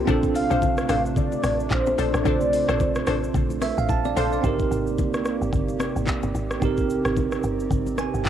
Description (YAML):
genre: amapiano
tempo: 110 BPM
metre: 4/4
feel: swing 58% on 16ths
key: unclear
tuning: A4 = 439 Hz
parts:
  - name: bell-like tine electric piano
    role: accompaniment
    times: 0.0-8.3 s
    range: C4 to C6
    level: -26 LUFS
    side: right 7 dB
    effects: medium stereo tremolo, cassette tape
  - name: hollow soft pad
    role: sustained chords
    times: 0.0-8.3 s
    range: C3 to G4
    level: -33 LUFS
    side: equal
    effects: chorus, cassette tape
  - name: glassy wavetable pluck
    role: stabs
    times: 0.0-4.4 s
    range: D4 to C5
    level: -28 LUFS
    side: left 10 dB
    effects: chorus, cassette tape, tape echo
  - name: woody log drum bass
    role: bass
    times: 0.0-8.3 s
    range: G1 to Bb1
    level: -28 LUFS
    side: equal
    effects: none
  - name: afro-pop drum kit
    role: drums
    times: 0.1-8.3 s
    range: handclaps, hi-hat, kick drum, rim click, shaker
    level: -27 LUFS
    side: equal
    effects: cassette tape
  - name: congas and bongos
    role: percussion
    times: 0.1-8.3 s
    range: none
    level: -32 LUFS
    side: left 8 dB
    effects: none
  - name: warm velvety synth lead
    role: melody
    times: 0.4-3.6 s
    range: C5 to F5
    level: -25 LUFS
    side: left 1 dB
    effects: chorus, cassette tape, tape echo
room: moderate spring reverb, RT60 2.2 s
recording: home recording on cassette, lossy compression artefacts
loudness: -21 LUFS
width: side -10 dB against mid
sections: 0.0-4.4 A section; 4.4-8.3 B section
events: drop 0.0-4.4; tine electric piano fill 3.3-4.4, 7.7-8.3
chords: 0.1 Bbmaj9; 4.4 Abmaj9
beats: | 0.07 0.62 1.17 1.71 | 2.26 2.80 3.35 3.89 | 4.44 4.98 5.53 6.08 | 6.62 7.17 7.71 8.26